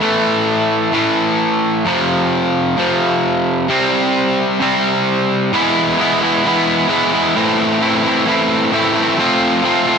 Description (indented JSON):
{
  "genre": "rock",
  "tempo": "131 BPM",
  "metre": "4/4",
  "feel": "straight",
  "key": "unclear",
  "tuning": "A4 = 441 Hz",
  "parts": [
    { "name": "crunchy overdriven guitar", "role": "solo", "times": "0.0-10.0 s", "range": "F2 to F4", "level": "-13 LUFS", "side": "equal", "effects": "tape echo" }
  ],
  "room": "light reverb",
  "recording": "none",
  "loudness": "-13 LUFS",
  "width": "side -6 dB against mid",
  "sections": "0.0-5.5 A section; 5.5-10.0 B section",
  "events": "none",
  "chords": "0.0 A5; 1.9 F5; 3.7 C5; 5.5 E; 7.4 Am; 9.2 F",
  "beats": "| 0.01 0.47 0.93 1.39 | 1.85 2.32 2.78 3.24 | 3.70 4.16 4.62 5.08 | 5.54 5.99 6.45 6.91 | 7.36 7.82 8.27 8.73 | 9.19 9.64"
}